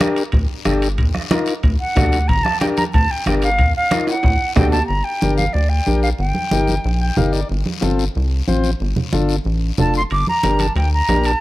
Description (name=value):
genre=latin, cumbia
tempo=184 BPM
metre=4/4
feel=straight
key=G minor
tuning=A4 = 444 Hz
part: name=combo organ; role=accompaniment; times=0.0-11.3 s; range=C4 to G5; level=-22 LUFS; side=left 3 dB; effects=none
part: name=bombo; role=percussion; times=0.0-4.7 s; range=none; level=-20 LUFS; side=equal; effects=none
part: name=congas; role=percussion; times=0.0-11.3 s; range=none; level=-23 LUFS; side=right 2 dB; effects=none
part: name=guiro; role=percussion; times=0.0-11.4 s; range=none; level=-32 LUFS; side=left 10 dB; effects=none
part: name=timbales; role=percussion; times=0.0-4.8, 10.1-11.4 s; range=none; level=-27 LUFS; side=right 4 dB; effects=none
part: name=rubbery square bass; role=bass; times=0.3-11.3 s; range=F1 to Eb2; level=-18 LUFS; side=equal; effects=none
part: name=silver concert flute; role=melody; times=1.8-7.1, 9.8-11.4 s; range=D5 to D6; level=-20 LUFS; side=right 1 dB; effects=none
room=small room reverb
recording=dry, close 1970s-style studio recording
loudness=-15 LUFS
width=side -17 dB against mid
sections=0.0-4.9 A section; 4.9-11.4 B section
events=drum fill 4.1-4.9; transistor combo organ fill 6.8-7.5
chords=0.0 Gm; 1.0 Ebsus2; 1.6 D; 2.3 Gm; 3.6 Ebsus2; 4.2 D; 4.9 Gm; 6.2 Eb/G; 7.5 F/G; 8.8 Dm/G; 10.1 Gm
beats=0.00 0.33 0.66 | 0.98 1.31 1.64 1.96 | 2.29 2.61 2.94 3.27 | 3.59 3.92 4.24 4.57 | 4.89 5.22 5.55 5.87 | 6.20 6.52 6.85 7.18 | 7.50 7.83 8.15 8.48 | 8.81 9.13 9.46 9.78 | 10.11 10.44 10.76 11.09